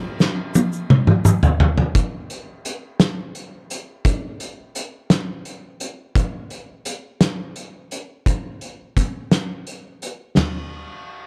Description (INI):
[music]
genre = rock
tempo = 57 BPM (dotted quarters)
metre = 6/8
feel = straight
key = none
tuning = none
[part]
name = loose indie drum kit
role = drums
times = 0.2-10.5 s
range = hi-hat, kick drum, ride cymbal, snare drum, toms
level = -20 LUFS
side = equal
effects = none
[part]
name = egg shaker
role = percussion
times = 0.2-1.5 s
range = none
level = -35 LUFS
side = equal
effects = none
[sound]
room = light reverb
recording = none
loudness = -20 LUFS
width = mono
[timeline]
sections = 0.0-2.0 A section; 2.0-10.4 B section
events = drum fill 0.0-2.0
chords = none